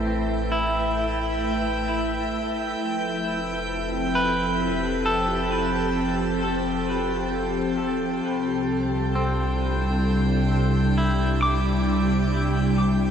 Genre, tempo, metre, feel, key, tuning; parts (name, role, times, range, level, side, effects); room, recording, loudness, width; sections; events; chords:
ambient; 66 BPM; 3/4; straight; A4 = 440 Hz
glassy FM pad; sustained chords; 0.0-13.1 s; C3 to E5; -24 LUFS; left 1 dB; ensemble chorus, built-in reverb
semi-hollow electric guitar; arpeggios; 0.0-13.1 s; C4 to D6; -28 LUFS; right 1 dB; diffuse ambient delay
warm sub bass; bass; 0.0-13.1 s; F1 to C2; -29 LUFS; right 1 dB
drifting glass-harmonics texture; texture; 0.0-13.1 s; G5 to G6; -32 LUFS; right 1 dB; chorus, built-in reverb
wet shimmer reverb, RT60 7.6 s; -21 LUFS; side -8 dB against mid
0.0-13.1 A section
0.0 Am7; 2.8 Fmaj7; 8.2 C